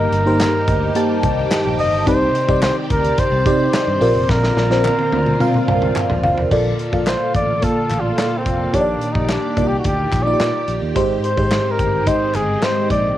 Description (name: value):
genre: 1980s-style pop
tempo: 108 BPM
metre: 4/4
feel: straight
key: Bb major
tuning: A4 = 441 Hz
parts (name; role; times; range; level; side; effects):
- warm flugelhorn; melody; 0.0-13.2 s; C4 to Eb5; -20 LUFS; equal; cassette tape, plate reverb
- FM electric piano with soft pad layer; accompaniment; 0.0-13.2 s; G2 to A5; -19 LUFS; equal; chorus, phaser, cassette tape, plate reverb
- string machine, violins; sustained chords; 0.0-13.2 s; D3 to D5; -27 LUFS; equal; ensemble chorus, cassette tape, plate reverb
- fingered electric bass; bass; 0.0-13.1 s; F1 to C3; -23 LUFS; equal; none
- modern studio drum kit; drums; 0.1-13.0 s; crash cymbal, hi-hat, kick drum, snare drum, tambourine, toms; -22 LUFS; equal; cassette tape
- group handclap; percussion; 0.4-12.8 s; none; -32 LUFS; left 2 dB; none
room: moderate small room reverb, RT60 0.6 s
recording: home recording on cassette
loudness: -15 LUFS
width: side -12 dB against mid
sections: 0.0-6.5 A section; 6.5-13.2 B section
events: drum fill 4.3-6.5; FM electric piano fill 5.7-6.5; flugelhorn solo 6.5-13.2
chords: 0.0 Eb/G; 2.1 Cmadd9; 4.0 Bbadd9; 6.5 Bbmaj7; 8.7 Ebmaj7/Bb; 11.0 Abmaj7